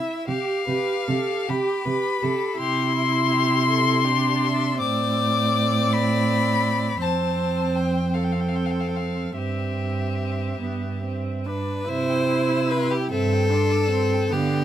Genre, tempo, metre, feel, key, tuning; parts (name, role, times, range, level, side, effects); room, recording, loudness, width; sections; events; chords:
classical, slow romantic movement for string quartet; 46-56 BPM (dotted quarters); 6/8; rubato; C major; A4 = 441 Hz
rich violin; melody; 0.0-14.6 s; E5 to E6; -26 LUFS; left 7 dB
bright violin; second line; 0.0-14.6 s; E4 to E5; -28 LUFS; left 2 dB
rich viola; accompaniment; 0.0-14.6 s; B3 to G4; -27 LUFS; right 3 dB
warm cello; bass; 0.3-14.6 s; F2 to D3; -24 LUFS; right 3 dB
little or no reverb; close, detailed microphones; -20 LUFS; side -10 dB against mid
0.0-11.9 A section; 11.9-14.6 B section
0.3 G7/C; 2.6 C; 4.8 Am; 7.0 Fadd9; 9.4 C/G; 10.6 G; 11.9 C